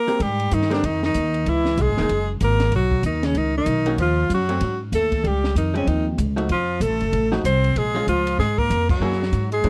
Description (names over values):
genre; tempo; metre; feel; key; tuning
jazz, small-group swing and bop; 191 BPM; 4/4; swing 61% on 8ths; unclear; A4 = 443 Hz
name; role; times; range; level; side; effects
bright alto saxophone; melody; 0.0-9.7 s; C#4 to C5; -25 LUFS; equal; none
warm tenor saxophone; second line; 0.0-9.7 s; C#3 to C4; -30 LUFS; equal; none
vintage hollow-body jazz guitar; accompaniment; 0.1-9.7 s; D#3 to Bb4; -28 LUFS; equal; none
compact cocktail drum kit; drums; 0.1-9.7 s; crash cymbal, hi-hat, kick drum, ride cymbal, snare drum; -30 LUFS; equal; none
upright bass; bass; 0.2-9.7 s; Fb1 to Bb2; -25 LUFS; equal; none
room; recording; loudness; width
small room ambience; dry, close 1970s-style studio recording; -21 LUFS; mono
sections
0.2-9.7 A section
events
break 0.0; band accent 8.9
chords
0.2 Abmaj7(no3); 1.5 Dbm7; 2.1 Gbadd9; 2.7 Badd9; 4.0 Ebm; 4.6 Ab5; 5.2 Dbmaj7; 6.5 F; 7.8 Bbm7; 9.0 Gb9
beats
| 0.19 0.51 0.82 1.14 | 1.46 1.77 2.09 2.40 | 2.72 3.03 3.35 3.66 | 3.98 4.29 4.61 4.92 | 5.24 5.55 5.87 6.18 | 6.50 6.81 7.12 7.44 | 7.75 8.07 8.38 8.70 | 9.01 9.32 9.64